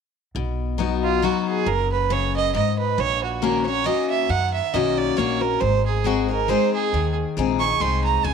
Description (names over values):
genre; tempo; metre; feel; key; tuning
bluegrass; 137 BPM; 3/4; swing 55% on 8ths; B major; A4 = 440 Hz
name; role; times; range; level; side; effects
upright bass; bass; 0.3-8.3 s; F#1 to F#2; -26 LUFS; equal; none
picked steel-string acoustic guitar; accompaniment; 0.4-8.3 s; F#2 to G#4; -23 LUFS; left 9 dB; none
rich fiddle; melody; 1.0-8.3 s; E#4 to C#6; -22 LUFS; right 10 dB; slapback echo
room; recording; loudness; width
light reverb, small room ambience; 1960s-style stereo with parts hard left and right; -19 LUFS; side -6 dB against mid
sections
0.3-8.3 A section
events
none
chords
0.3 B; 3.0 F#6/A#; 5.6 G#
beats
| 0.35 0.79 1.23 | 1.66 2.10 2.54 | 2.98 3.42 3.86 | 4.30 4.74 5.17 | 5.61 6.05 6.49 | 6.93 7.37 7.81 | 8.25